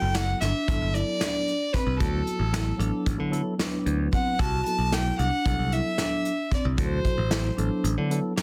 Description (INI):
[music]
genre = progressive instrumental, band music in an uneven meter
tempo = 226 BPM (eighths)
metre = 9/8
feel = straight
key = D mixolydian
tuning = A4 = 437 Hz
[part]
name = rich violin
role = melody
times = 0.0-7.8 s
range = A4 to A5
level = -32 LUFS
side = equal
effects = none
[part]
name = mellow tine electric piano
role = accompaniment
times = 0.0-8.4 s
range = B2 to B4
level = -34 LUFS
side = equal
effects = none
[part]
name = modern bright picked electric bass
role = bass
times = 0.0-8.2 s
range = F#1 to D3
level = -29 LUFS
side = equal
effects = none
[part]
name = vibraphone with soft mallets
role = arpeggios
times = 0.1-8.4 s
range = C4 to F#4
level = -35 LUFS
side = equal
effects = digital delay
[part]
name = soft brush drum kit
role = drums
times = 0.1-8.4 s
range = hi-hat, kick drum, snare drum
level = -31 LUFS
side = equal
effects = none
[sound]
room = moderate studio ambience, RT60 0.5 s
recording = dense, heavily limited modern master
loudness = -26 LUFS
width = mono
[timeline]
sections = 0.0-8.4 A section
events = none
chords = 0.0 Gmaj9; 2.0 D; 4.4 Cmaj7; 6.8 D7